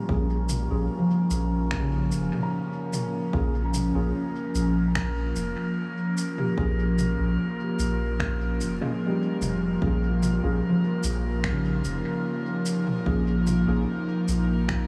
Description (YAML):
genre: ambient dub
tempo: 74 BPM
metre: 4/4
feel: straight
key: Bb dorian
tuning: A4 = 443 Hz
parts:
  - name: airy breathy pad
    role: sustained chords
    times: 0.0-14.9 s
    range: F3 to Bb4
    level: -31 LUFS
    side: equal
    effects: chorus
  - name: felt-muted upright piano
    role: arpeggios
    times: 0.0-14.9 s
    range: Db3 to Bb5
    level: -34 LUFS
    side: equal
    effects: tape echo
  - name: drifting glass-harmonics texture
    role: texture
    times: 0.0-14.9 s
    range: Bb4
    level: -41 LUFS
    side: equal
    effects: chorus, built-in reverb
  - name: tine electric piano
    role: stabs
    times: 0.1-13.8 s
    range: Ab3 to Ab4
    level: -38 LUFS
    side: equal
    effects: overdrive, dub echo
  - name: soft dub sub bass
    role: bass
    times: 0.1-14.9 s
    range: F1 to Bb1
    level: -29 LUFS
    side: equal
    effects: none
  - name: electronic kick drum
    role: drums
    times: 0.1-14.9 s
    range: none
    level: -34 LUFS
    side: equal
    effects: none
  - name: organic electronic drum kit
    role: drums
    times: 0.5-14.9 s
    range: finger snaps, shaker, toms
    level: -36 LUFS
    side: equal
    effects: small room reverb, dub echo
room: light reverb, digital ambience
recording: studio reverb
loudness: -26 LUFS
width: mono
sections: 0.0-14.9 A section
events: none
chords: 0.0 Bbm7